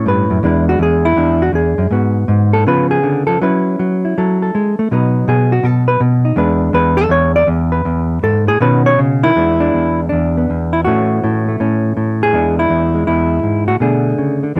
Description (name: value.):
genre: solo jazz.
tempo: 162 BPM.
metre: 4/4.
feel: swing 66% on 8ths, rubato.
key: E mixolydian.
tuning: A4 = 440 Hz.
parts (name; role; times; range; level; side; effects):
hollow-body jazz guitar; solo; 0.0-14.6 s; E2 to D5; -14 LUFS; equal; none.
room: light reverb.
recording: close, detailed microphones.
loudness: -14 LUFS.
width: mono.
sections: 0.0-9.4 A section; 9.4-14.6 B section.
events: hollow-body jazz guitar solo 0.0-9.4.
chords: 0.4 E7; 1.9 G#m7; 2.7 C#7; 3.4 F#m7; 4.9 B; 6.4 E7; 8.6 Badd9; 9.4 E7; 10.9 A; 12.3 E7; 13.8 Bm7.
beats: 0.07 | 0.44 0.81 1.18 1.54 | 1.92 2.29 2.66 3.04 | 3.42 3.80 4.17 4.54 | 4.91 5.27 5.64 6.00 | 6.37 6.73 7.10 7.47 | 7.85 8.22 8.61 8.99 | 9.37 9.75 10.13 10.50 | 10.88 11.24 11.61 11.97 | 12.34 12.71 13.07 13.44 | 13.81 14.18 14.56.